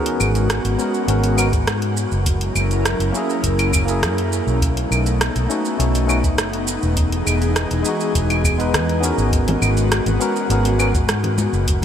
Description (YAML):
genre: sunset chillout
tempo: 102 BPM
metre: 4/4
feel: straight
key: G# minor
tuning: A4 = 440 Hz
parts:
  - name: barky tine electric piano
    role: accompaniment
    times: 0.0-10.9 s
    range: G#3 to B4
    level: -24 LUFS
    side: left 1 dB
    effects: overdrive, auto-pan, diffuse ambient delay
  - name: airy breathy pad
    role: sustained chords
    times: 0.0-11.8 s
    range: E3 to A#4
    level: -23 LUFS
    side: left 2 dB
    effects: chorus
  - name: deep house drum kit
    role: drums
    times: 0.1-11.8 s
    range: claves, hi-hat, rim click, shaker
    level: -24 LUFS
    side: right 2 dB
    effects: none
  - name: vintage muted fingered electric bass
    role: bass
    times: 0.2-11.8 s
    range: E1 to G#2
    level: -20 LUFS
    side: equal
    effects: none
  - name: electronic kick drum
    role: drums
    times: 1.5-11.8 s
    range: none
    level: -21 LUFS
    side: equal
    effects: none
  - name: congas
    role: percussion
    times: 9.5-11.8 s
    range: none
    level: -28 LUFS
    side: left 2 dB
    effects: none
room: moderate huge ambient reverb, RT60 7.7 s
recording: dreamy mix soaked in reverb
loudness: -16 LUFS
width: side -9 dB against mid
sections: 0.0-11.8 A section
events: none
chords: 0.0 G#m11; 2.3 F#7; 4.6 B9; 7.0 Emaj7; 9.3 G#m11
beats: 0.50 1.09 1.68 | 2.27 2.86 3.44 4.03 | 4.62 5.21 5.80 6.39 | 6.97 7.56 8.15 8.74 | 9.33 9.91 10.50 11.09 | 11.68